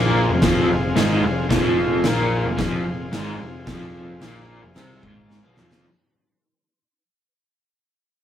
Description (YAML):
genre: garage rock duo or trio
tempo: 111 BPM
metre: 4/4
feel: straight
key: F minor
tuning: A4 = 439 Hz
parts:
  - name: overdriven combo organ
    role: sustained chords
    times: 0.0-5.8 s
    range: F4 to C5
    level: -29 LUFS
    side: left 2 dB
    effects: none
  - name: crunchy overdriven guitar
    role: riff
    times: 0.0-5.8 s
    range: F2 to C4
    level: -22 LUFS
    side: equal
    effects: tremolo
  - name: fuzz picked electric bass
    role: bass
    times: 0.0-5.8 s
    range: F1 to C2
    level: -26 LUFS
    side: equal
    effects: overdrive
  - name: oversized low-tuned drum kit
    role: drums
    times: 0.4-5.8 s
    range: crash cymbal, kick drum, snare drum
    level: -23 LUFS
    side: equal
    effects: none
room: light reverb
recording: rough rehearsal-room recording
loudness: -18 LUFS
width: side -10 dB against mid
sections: 0.0-5.9 A section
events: fade-out 0.0-5.9; drum fill 5.3-5.9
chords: 0.0 Fm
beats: 0.43 0.98 | 1.52 2.06 2.60 3.14 | 3.69 4.23 4.77 5.31